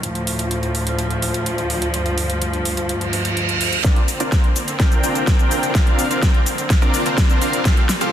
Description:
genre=EDM, festival progressive house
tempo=126 BPM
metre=4/4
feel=straight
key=Bb major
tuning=A4 = 440 Hz
part: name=clear studio string section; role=sustained chords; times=0.0-8.1 s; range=D2 to C4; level=-23 LUFS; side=equal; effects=sidechain pumping
part: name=big-room dance drum kit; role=drums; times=0.0-8.1 s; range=hi-hat, shaker, snare drum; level=-24 LUFS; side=equal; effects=overdrive, studio reverb
part: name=reverse cymbal and riser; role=sound effects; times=3.0-8.1 s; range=none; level=-27 LUFS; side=right 4 dB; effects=none
part: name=dense compressed supersaw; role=riff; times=3.8-8.1 s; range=C4 to G5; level=-21 LUFS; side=equal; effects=vintage 12-bit sampler grit, sidechain pumping, low-pass filter, tape echo
part: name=electronic kick drum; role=drums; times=3.8-7.7 s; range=none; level=-16 LUFS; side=equal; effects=overdrive, studio reverb
room=light reverb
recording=dense, heavily limited modern master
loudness=-16 LUFS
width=side -10 dB against mid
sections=0.0-3.8 A section; 3.8-8.1 B section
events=reverse cymbal 3.0-3.8; build-up 3.8-8.1; drum fill 3.8-8.1; filter sweep on supersaw synth 3.8-8.1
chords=0.0 Dm; 3.8 Bbadd9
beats=| 0.03 0.51 0.99 1.46 | 1.94 2.42 2.89 3.37 | 3.84 4.32 4.80 5.27 | 5.75 6.22 6.70 7.18 | 7.65

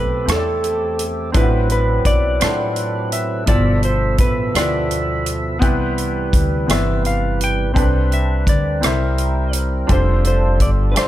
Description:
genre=slow gospel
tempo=56 BPM (dotted quarters)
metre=6/8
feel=straight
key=C major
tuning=A4 = 440 Hz
part: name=clean lap steel guitar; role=melody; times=0.0-11.1 s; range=A4 to G5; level=-23 LUFS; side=left 1 dB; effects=none
part: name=clear baby grand piano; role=accompaniment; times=0.0-11.1 s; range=G2 to B5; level=-24 LUFS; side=left 1 dB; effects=none
part: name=percussive tonewheel organ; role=sustained chords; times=0.0-11.1 s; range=B2 to E5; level=-23 LUFS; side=right 2 dB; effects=slow rotary speaker, overdrive
part: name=upright bass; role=bass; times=0.0-11.1 s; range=F1 to A2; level=-20 LUFS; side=equal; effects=none
part: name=natural country drum kit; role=drums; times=0.3-11.1 s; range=hi-hat, kick drum, rim click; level=-19 LUFS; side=equal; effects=none
room=little or no reverb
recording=none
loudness=-15 LUFS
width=side -13 dB against mid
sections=0.0-11.1 A section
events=none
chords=0.0 Am9; 1.3 D13/A; 3.5 G13; 5.6 Cmaj7; 7.8 Am11/C; 8.8 C7; 9.9 F69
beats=0.28 | 1.35 2.42 | 3.49 4.56 | 5.63 6.70 | 7.76 8.83 | 9.90 10.96

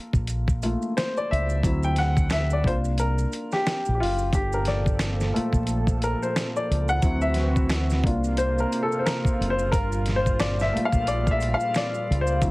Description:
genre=R&B, neo-soul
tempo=89 BPM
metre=4/4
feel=swing 59% on 16ths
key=G dorian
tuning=A4 = 440 Hz
part: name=warm upright piano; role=accompaniment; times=0.0-12.5 s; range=F#3 to G5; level=-26 LUFS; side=left 1 dB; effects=none
part: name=deep dub fingered electric bass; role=bass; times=0.1-12.5 s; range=F#1 to D2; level=-25 LUFS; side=equal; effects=none
part: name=dusty soul sampler-style drum kit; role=drums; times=0.1-12.5 s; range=hi-hat, kick drum, snare drum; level=-26 LUFS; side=equal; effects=none
part: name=maracas and finger snaps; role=percussion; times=0.1-12.5 s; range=none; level=-41 LUFS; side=right 6 dB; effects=none
part: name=warm analog pad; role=sustained chords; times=4.3-12.5 s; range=Bb2 to A4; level=-31 LUFS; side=right 2 dB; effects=chorus
room=light reverb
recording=heavily compressed radio sound, multiband compression, vinyl crackle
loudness=-21 LUFS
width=side -21 dB against mid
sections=0.0-12.5 A section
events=upright piano solo 0.0-12.5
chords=0.0 Gm9 (rootless); 1.6 D9; 2.6 C7sus4; 4.3 Gm9; 7.0 D9; 8.0 C7sus4; 9.7 Gm9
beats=0.28 0.96 | 1.63 2.31 2.98 3.65 | 4.33 5.00 5.68 6.35 | 7.02 7.70 8.37 9.05 | 9.72 10.39 11.07 11.74 | 12.42

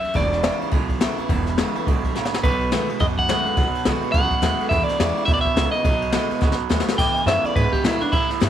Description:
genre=rockabilly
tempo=211 BPM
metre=4/4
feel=swing 60% on 8ths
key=E major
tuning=A4 = 441 Hz
part: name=electric guitar at the edge of break-up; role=melody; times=0.0-8.3 s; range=D4 to G5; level=-23 LUFS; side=equal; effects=tape echo
part: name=picked steel-string acoustic guitar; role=accompaniment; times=0.0-8.5 s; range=E2 to F#4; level=-29 LUFS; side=left 10 dB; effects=none
part: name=upright bass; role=bass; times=0.0-8.5 s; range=E1 to B2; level=-25 LUFS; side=right 1 dB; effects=none
part: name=jazz brush drum kit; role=drums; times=0.0-8.5 s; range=crash cymbal, kick drum, ride cymbal, snare drum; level=-23 LUFS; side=left 2 dB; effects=none
part: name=electric guitar through a small old amp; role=riff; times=0.1-8.5 s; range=E2 to G#3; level=-26 LUFS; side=right 14 dB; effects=none
room=light reverb, studio reverb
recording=1960s-style stereo with parts hard left and right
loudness=-18 LUFS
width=side -10 dB against mid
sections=0.0-7.0 A section; 7.0-8.5 B section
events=drum fill 2.1, 6.4-7.0; clean electric guitar solo 7.0-8.5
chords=0.2 E7; 2.4 B7; 4.7 E7; 5.8 B7; 7.0 E7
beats=| 0.16 0.44 0.73 1.01 | 1.30 1.58 1.86 2.15 | 2.43 2.72 3.00 3.29 | 3.57 3.86 4.14 4.43 | 4.71 5.00 5.28 5.56 | 5.85 6.13 6.42 6.70 | 6.99 7.27 7.56 7.84 | 8.13 8.41

